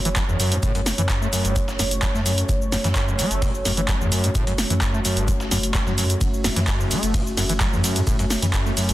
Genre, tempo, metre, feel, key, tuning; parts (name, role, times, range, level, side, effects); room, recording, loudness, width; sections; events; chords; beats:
acid house; 129 BPM; 4/4; straight; F# minor; A4 = 440 Hz
dark analog pad; sustained chords; 0.0-8.9 s; A3 to E5; -28 LUFS; equal; chorus, sidechain pumping
round analog bass; bass; 0.0-8.9 s; F#1 to F#2; -26 LUFS; equal; tube saturation, sidechain pumping
overdriven acid bass; riff; 0.1-8.9 s; F#1 to A3; -26 LUFS; equal; distortion, analog chorus, cassette tape, sidechain pumping, dub echo
punchy analog drum machine; drums; 0.1-8.9 s; cabasa, handclaps, hi-hat, ride cymbal, snare drum; -25 LUFS; equal
dusty soul sampler-style drum kit; drums; 0.2-8.9 s; hi-hat, shaker, snare drum; -36 LUFS; equal
electronic kick drum; drums; 0.2-8.6 s; -24 LUFS; equal
light reverb, digital ambience; dense, heavily limited modern master; -19 LUFS; side -15 dB against mid
0.0-8.9 A section
0.0 F#m
0.16 | 0.63 1.09 1.56 2.02 | 2.49 2.96 3.42 3.88 | 4.35 4.82 5.28 5.75 | 6.21 6.68 7.14 7.61 | 8.07 8.54